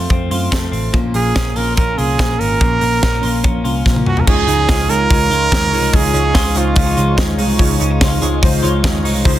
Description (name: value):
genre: jangly indie pop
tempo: 144 BPM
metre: 4/4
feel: straight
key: Db major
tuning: A4 = 442 Hz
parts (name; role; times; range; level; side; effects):
- fingerpicked plugged-in steel-string acoustic guitar; accompaniment; 0.0-9.4 s; Bb2 to Eb4; -24 LUFS; right 5 dB; none
- twelve-string electric guitar; arpeggios; 0.0-9.4 s; F2 to F4; -21 LUFS; left 4 dB; none
- vintage muted picked electric bass; bass; 0.0-9.4 s; Ab1 to Gb2; -19 LUFS; equal; none
- modern studio drum kit; drums; 0.1-9.4 s; crash cymbal, hi-hat, kick drum, snare drum, toms; -16 LUFS; equal; none
- clear trumpet; melody; 1.1-7.4 s; F4 to Bb4; -18 LUFS; right 4 dB; none
- warm analog keys; accompaniment; 4.3-9.4 s; Eb4 to Db5; -24 LUFS; left 1 dB; chorus
- ethereal airy pad; sustained chords; 5.7-9.4 s; Ab4 to Db6; -29 LUFS; right 1 dB; ensemble chorus, built-in reverb, tremolo
room: light reverb, studio reverb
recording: dense, heavily limited modern master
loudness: -12 LUFS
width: side -13 dB against mid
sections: 0.0-4.3 A section; 4.3-9.4 B section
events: drum fill 3.9-4.3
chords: 0.0 F; 0.9 Bbm; 4.3 Dbadd9